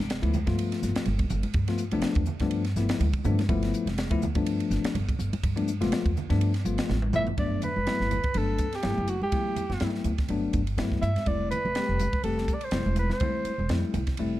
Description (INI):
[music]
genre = electric jazz fusion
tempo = 124 BPM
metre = 4/4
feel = swing 56% on 16ths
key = G mixolydian, G major from 7.4 s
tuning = A4 = 441 Hz
[part]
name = upright bass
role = bass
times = 0.0-14.4 s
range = E1 to G2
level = -28 LUFS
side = right 1 dB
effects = none
[part]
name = crisp fusion drum kit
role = drums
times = 0.0-14.3 s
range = hi-hat, kick drum, ride cymbal, snare drum, toms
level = -31 LUFS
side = right 1 dB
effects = none
[part]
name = bell-like tine electric piano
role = accompaniment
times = 0.2-14.4 s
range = F3 to G4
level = -30 LUFS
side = left 4 dB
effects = none
[part]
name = congas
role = percussion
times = 0.3-14.1 s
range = none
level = -35 LUFS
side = right 2 dB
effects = none
[part]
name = breathy soprano saxophone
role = melody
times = 7.2-13.8 s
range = F#4 to E5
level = -30 LUFS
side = right 1 dB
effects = slapback echo
[sound]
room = little or no reverb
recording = dark, warm production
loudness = -24 LUFS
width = side -14 dB against mid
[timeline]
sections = 0.0-7.4 A section; 7.4-14.4 B section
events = drum fill 6.9-7.4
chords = 0.0 G9; 7.4 Gmaj9; 11.3 Fmaj9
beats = 0.10 0.59 1.07 | 1.55 2.04 2.52 3.01 | 3.49 3.98 4.46 4.95 | 5.43 5.92 6.41 6.89 | 7.38 7.87 8.35 8.84 | 9.32 9.81 10.30 10.78 | 11.27 11.76 12.24 12.73 | 13.21 13.70 14.19